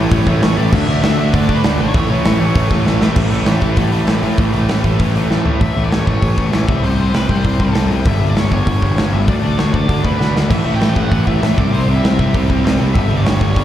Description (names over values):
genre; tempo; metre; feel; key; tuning
punk rock; 196 BPM; 4/4; straight; unclear; A4 = 441 Hz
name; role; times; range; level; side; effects
raw garage guitar; melody; 0.0-2.8, 5.6-13.6 s; A4 to G5; -24 LUFS; left 1 dB; overdrive, slapback echo, digital delay
crunchy overdriven guitar; riff; 0.0-5.6, 10.5-13.6 s; G2 to D4; -21 LUFS; right 13 dB; slapback echo
tight distorted guitar; riff; 0.0-13.6 s; G2 to D4; -22 LUFS; left 11 dB; distortion, slapback echo
fuzz picked electric bass; bass; 0.0-13.6 s; G1 to A2; -16 LUFS; equal; overdrive
big rock drum kit; drums; 0.1-13.6 s; crash cymbal, hi-hat, kick drum, snare drum, toms; -17 LUFS; equal; none
room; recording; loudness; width
little or no reverb; live gig heard through the venue's PA, recital hall reverb; -12 LUFS; side -11 dB against mid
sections
0.0-3.2 A section; 3.2-5.6 B section; 5.6-13.6 C section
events
drum fill 2.9-3.2, 5.3-5.6, 10.2-10.5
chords
0.0 A; 0.7 D5; 1.9 A5; 6.7 C5; 8.1 G5; 9.3 D5; 10.5 A5; 11.6 C; 13.0 G5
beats
0.12 0.42 | 0.73 1.03 1.34 1.64 | 1.95 2.25 2.56 2.86 | 3.17 3.47 3.78 4.08 | 4.39 4.69 5.00 5.30 | 5.61 5.92 6.22 6.53 | 6.83 7.14 7.45 7.75 | 8.06 8.36 8.67 8.97 | 9.28 9.59 9.89 10.20 | 10.51 10.81 11.12 11.42 | 11.73 12.04 12.34 12.65 | 12.95 13.26 13.56